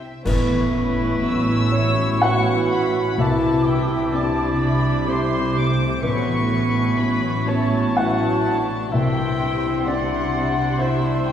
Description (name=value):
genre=cinematic, emotional film score for orchestra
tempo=63 BPM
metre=3/4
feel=rubato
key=unclear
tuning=A4 = 440 Hz
part: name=warm studio violin section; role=second line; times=0.0-11.3 s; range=B3 to E5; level=-31 LUFS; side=left 3 dB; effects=none
part: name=felt-muted upright piano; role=accompaniment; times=0.0-11.3 s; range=A1 to F#5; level=-26 LUFS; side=left 1 dB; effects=none
part: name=concert harp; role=arpeggios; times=0.0-11.3 s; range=A2 to C6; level=-31 LUFS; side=left 4 dB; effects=none
part: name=small flute group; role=second line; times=0.2-11.3 s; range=C6 to D6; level=-31 LUFS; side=right 1 dB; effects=none
part: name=dark French horn section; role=sustained chords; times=0.2-11.3 s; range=B3 to F#4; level=-25 LUFS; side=left 1 dB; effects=none
part: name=dark studio double bass section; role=bass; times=0.2-11.3 s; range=A1 to C2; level=-26 LUFS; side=right 2 dB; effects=none
part: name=clear clarinet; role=second line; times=0.3-11.3 s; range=D4 to E4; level=-31 LUFS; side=equal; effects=none
part: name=clear oboe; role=second line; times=0.3-11.3 s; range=B4 to F#5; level=-31 LUFS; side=equal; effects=none
part: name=rich studio viola section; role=accompaniment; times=0.3-11.3 s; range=E3 to D4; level=-29 LUFS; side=right 1 dB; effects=none
part: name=warm chamber cello section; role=bass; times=0.3-11.3 s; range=A2 to C3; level=-27 LUFS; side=right 2 dB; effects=none
part: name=clash cymbals and concert bass drum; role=percussion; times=0.3-2.2 s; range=none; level=-27 LUFS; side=equal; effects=none
part: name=warm studio violin section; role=melody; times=1.2-11.3 s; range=E5 to E6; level=-28 LUFS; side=left 3 dB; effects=none
room=wet concert hall reverb, RT60 2.6 s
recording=heard from further back in the room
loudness=-18 LUFS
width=side -9 dB against mid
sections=0.2-11.3 A section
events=band accent 0.2-1.2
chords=0.2 Aadd9; 3.2 Cadd9; 6.0 Aadd9; 8.9 Cadd9